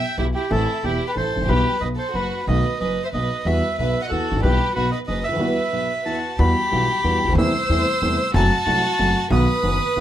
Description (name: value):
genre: tango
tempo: 184 BPM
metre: 3/4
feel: rubato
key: E harmonic minor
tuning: A4 = 438 Hz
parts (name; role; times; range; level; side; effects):
- bandoneon; melody; 0.0-10.0 s; G4 to E6; -23 LUFS; equal; none
- warm chamber violin section; second line; 0.0-10.0 s; E4 to E5; -26 LUFS; equal; none
- warm upright piano; accompaniment; 0.2-10.0 s; E1 to A4; -24 LUFS; equal; none
- upright bass; bass; 0.2-10.0 s; E1 to E2; -22 LUFS; equal; none
room: light reverb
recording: close, detailed microphones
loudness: -18 LUFS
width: side -11 dB against mid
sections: 0.0-6.4 A section; 6.4-10.0 B section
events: break 5.4-6.4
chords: 0.0 Em; 0.5 Am; 1.5 Em/B; 1.8 B5; 2.5 B7; 3.5 Emadd9; 4.4 Em/B; 4.8 B; 5.4 Emadd9; 7.4 Am7/E; 8.3 F#dim; 9.3 B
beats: 0.19 | 0.51 0.84 1.16 | 1.49 1.81 2.14 | 2.47 2.80 3.13 | 3.46 3.79 4.11 | 4.43 4.76 5.08 | 5.40 5.73 6.05 | 6.39 6.71 7.04 | 7.37 7.69 8.02 | 8.34 8.66 8.99 | 9.31 9.63 9.96